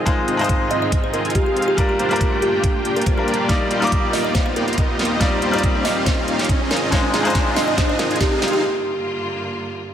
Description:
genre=future bass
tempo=140 BPM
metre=4/4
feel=swing 53% on 16ths, half-time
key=Eb major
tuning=A4 = 440 Hz
part: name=kalimba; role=melody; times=0.0-8.6 s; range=G4 to Eb5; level=-24 LUFS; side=right 1 dB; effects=sidechain pumping, tape echo
part: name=clear studio string section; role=sustained chords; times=0.0-9.9 s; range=Eb2 to F4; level=-31 LUFS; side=left 1 dB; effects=sidechain pumping
part: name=dense compressed supersaw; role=riff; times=0.0-8.6 s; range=Bb3 to Ab5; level=-23 LUFS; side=equal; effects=cassette tape, sidechain pumping, low-pass filter
part: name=riser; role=sound effects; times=0.0-8.6 s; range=none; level=-28 LUFS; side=right 1 dB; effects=none
part: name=bright grand piano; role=accompaniment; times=0.1-8.7 s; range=G3 to D6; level=-23 LUFS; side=left 2 dB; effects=sidechain pumping
part: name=electronic kick drum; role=drums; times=0.1-8.3 s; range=none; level=-20 LUFS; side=equal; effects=studio reverb
part: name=pop drum kit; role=drums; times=0.1-8.6 s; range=hi-hat, snare drum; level=-26 LUFS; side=equal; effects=high-pass filter on hats, studio reverb, high-pass filter on snare
room=moderate lush hall reverb, RT60 2.0 s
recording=none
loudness=-16 LUFS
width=side -9 dB against mid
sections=0.0-9.9 A section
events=build-up 0.0-9.9; riser 0.0-8.6; drum fill 3.5-8.6; break 8.6-9.9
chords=0.0 Ab6; 1.8 Gm7; 3.5 Ebmaj9; 6.7 Ab6; 8.6 Gm7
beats=| 0.07 0.49 0.92 1.35 | 1.78 2.21 2.64 3.07 | 3.49 3.92 4.35 4.78 | 5.21 5.64 6.07 6.49 | 6.92 7.35 7.78 8.21 | 8.64 9.07 9.49 9.92

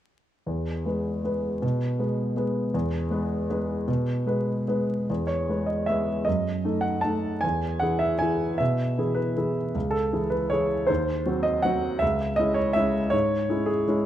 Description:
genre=classical, piano waltz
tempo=138-167 BPM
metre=3/4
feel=rubato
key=E major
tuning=A4 = 440 Hz
part: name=warm grand piano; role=solo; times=0.5-14.1 s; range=C#2 to A5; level=-23 LUFS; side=equal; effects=none
room=moderate recital hall reverb, RT60 1.3 s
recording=close, detailed microphones, vinyl crackle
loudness=-23 LUFS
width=side -11 dB against mid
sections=0.5-5.1 A section; 5.1-14.1 B section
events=none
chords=0.5 E; 6.3 D#dim/F#; 7.4 E; 9.7 C#m; 10.9 Cdim/Eb; 12.0 C#m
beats=| 0.46 0.85 1.24 | 1.63 1.99 2.37 | 2.73 3.11 3.50 | 3.88 4.26 4.67 | 5.09 5.48 5.88 | 6.26 6.64 7.03 | 7.43 7.82 8.21 | 8.60 8.98 9.37 | 9.74 10.13 10.52 | 10.89 11.26 11.64 | 12.01 12.38 12.76 | 13.13 13.50 13.88

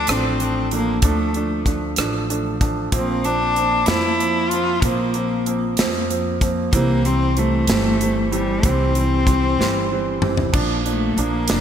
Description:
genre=six-eight pop ballad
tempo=63 BPM (dotted quarters)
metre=6/8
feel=straight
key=unclear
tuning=A4 = 442 Hz
part: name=warm cello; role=melody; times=0.0-11.6 s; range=G3 to F4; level=-22 LUFS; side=left 1 dB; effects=none
part: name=warm baby grand piano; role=accompaniment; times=0.0-11.6 s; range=E3 to D4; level=-23 LUFS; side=right 3 dB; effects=none
part: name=upright bass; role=bass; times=0.0-11.6 s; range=F1 to F2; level=-24 LUFS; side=left 1 dB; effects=none
part: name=modern studio drum kit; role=drums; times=0.1-11.6 s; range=crash cymbal, hi-hat, kick drum, rim click, snare drum, toms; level=-22 LUFS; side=equal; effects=gated reverb
room=moderate lush hall reverb, RT60 2.5 s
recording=bright 1980s-style digital production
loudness=-17 LUFS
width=side -9 dB against mid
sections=0.0-10.5 A section; 10.5-11.6 B section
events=drum fill 9.6-10.5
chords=0.0 Dm; 2.9 Bbsus2; 6.7 C; 10.5 Bb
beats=0.08 | 1.03 1.98 | 2.93 3.88 | 4.83 5.78 | 6.73 7.68 | 8.63 9.58 | 10.53 11.48

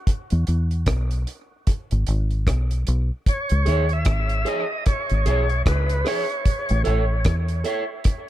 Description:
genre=dub reggae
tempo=75 BPM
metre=4/4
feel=swing 60% on 16ths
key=C# minor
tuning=A4 = 441 Hz
part: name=deep reggae drum kit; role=drums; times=0.1-8.3 s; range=hi-hat, kick drum, rim click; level=-22 LUFS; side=equal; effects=none
part: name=deep dub fingered electric bass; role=bass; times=0.3-7.6 s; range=G#1 to E2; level=-20 LUFS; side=equal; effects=none
part: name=tonewheel organ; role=melody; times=3.3-6.8 s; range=B4 to E5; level=-28 LUFS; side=equal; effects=overdrive, slow rotary speaker, dub echo
part: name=electric guitar at the edge of break-up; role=accompaniment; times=3.7-7.8 s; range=G#4 to E5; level=-27 LUFS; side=right 3 dB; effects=dub echo
room=small room ambience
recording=dark, warm production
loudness=-20 LUFS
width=side -14 dB against mid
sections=0.0-8.3 A section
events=break 0.0-3.3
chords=0.1 E; 3.3 C#m; 6.5 A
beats=| 0.07 0.87 1.67 2.47 | 3.26 4.06 4.86 5.66 | 6.45 7.25 8.05

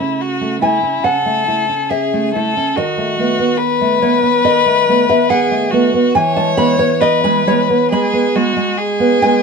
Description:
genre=romantic duo for violin and classical guitar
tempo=64-73 BPM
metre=4/4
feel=rubato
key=E major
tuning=A4 = 435 Hz
part: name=rich violin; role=melody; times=0.0-9.4 s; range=E4 to C#5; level=-16 LUFS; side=left 4 dB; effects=none
part: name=nylon-string guitar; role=accompaniment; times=0.0-9.4 s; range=C#3 to B5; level=-14 LUFS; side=right 2 dB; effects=none
room=moderate studio reverb, RT60 0.8 s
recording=band playing live in one room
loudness=-12 LUFS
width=side -5 dB against mid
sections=0.0-9.4 A section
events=none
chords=0.0 A/C#; 2.8 B7/D#; 6.1 E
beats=0.20 1.03 1.90 | 2.76 3.58 4.43 5.30 | 6.14 7.01 7.92 8.79

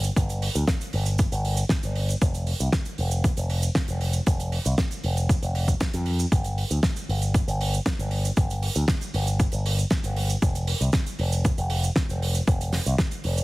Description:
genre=nu-disco, nu disco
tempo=117 BPM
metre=4/4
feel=straight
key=unclear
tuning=A4 = 440 Hz
part: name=picked electric bass with an envelope filter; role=bass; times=0.0-13.4 s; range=F1 to F2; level=-24 LUFS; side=equal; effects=none
part: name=damped 70s drum kit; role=drums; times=0.0-13.4 s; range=hi-hat, shaker, snare drum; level=-30 LUFS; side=right 1 dB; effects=studio reverb
part: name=electronic kick drum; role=drums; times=0.2-13.1 s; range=none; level=-24 LUFS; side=equal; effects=overdrive, studio reverb
room=little or no reverb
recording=heavily compressed radio sound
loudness=-22 LUFS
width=side -20 dB against mid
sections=0.0-13.4 A section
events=none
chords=none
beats=| 0.17 0.68 1.19 1.71 | 2.22 2.73 3.24 3.76 | 4.27 4.78 5.29 5.81 | 6.32 6.83 7.35 7.86 | 8.37 8.88 9.40 9.91 | 10.42 10.94 11.45 11.96 | 12.47 12.99

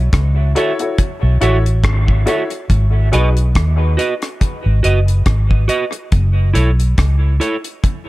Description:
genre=dub reggae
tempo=70 BPM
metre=4/4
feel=swing 56% on 16ths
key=unclear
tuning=A4 = 441 Hz
part: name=vintage muted fingered electric bass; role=bass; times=0.0-7.4 s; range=F#1 to D#2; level=-13 LUFS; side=equal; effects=none
part: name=deep reggae drum kit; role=drums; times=0.1-8.1 s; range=hi-hat, kick drum, rim click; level=-17 LUFS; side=equal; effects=none
part: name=clean electric guitar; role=accompaniment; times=0.6-7.6 s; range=E4 to E5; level=-21 LUFS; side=right 3 dB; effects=warbly pitch drift, tape echo
part: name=warm upright piano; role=stabs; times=0.6-3.3 s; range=D#4 to C#5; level=-23 LUFS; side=left 3 dB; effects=tape echo
room=small room ambience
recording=echo-heavy mix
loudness=-13 LUFS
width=side -18 dB against mid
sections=0.0-8.1 A section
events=none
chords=0.0 F#m7; 2.7 G#m7; 6.1 F#m7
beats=0.13 0.98 1.84 | 2.69 3.55 4.41 5.26 | 6.12 6.97 7.83

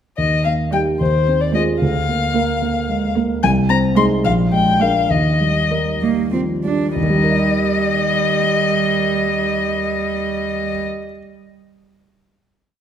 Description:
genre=quick classical-period movement for piano trio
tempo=63-75 BPM (dotted quarters)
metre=6/8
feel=rubato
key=Eb major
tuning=A4 = 440 Hz
part: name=dark violin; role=melody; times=0.2-10.8 s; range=C5 to C6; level=-19 LUFS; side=left 6 dB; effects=none
part: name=dark concert grand piano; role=accompaniment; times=0.2-11.2 s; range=Bb1 to Eb5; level=-18 LUFS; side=equal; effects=none
part: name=warm cello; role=second line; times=0.7-10.8 s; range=G3 to D4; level=-22 LUFS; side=right 7 dB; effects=none
room=wet scoring stage reverb, RT60 1.6 s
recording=none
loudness=-15 LUFS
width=side -9 dB against mid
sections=0.2-7.0 theme; 7.0-10.7 final chord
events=slowing down 2.6-7.0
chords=0.2 Eb; 1.0 Fm7/Eb; 1.8 Bb/D; 3.4 Ab/C; 4.2 Bb7; 5.1 Eb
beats=| 0.18 1.00 | 1.81 2.62 | 3.43 4.24 | 5.11 6.02 | 6.96 7.89 | 8.83 9.76

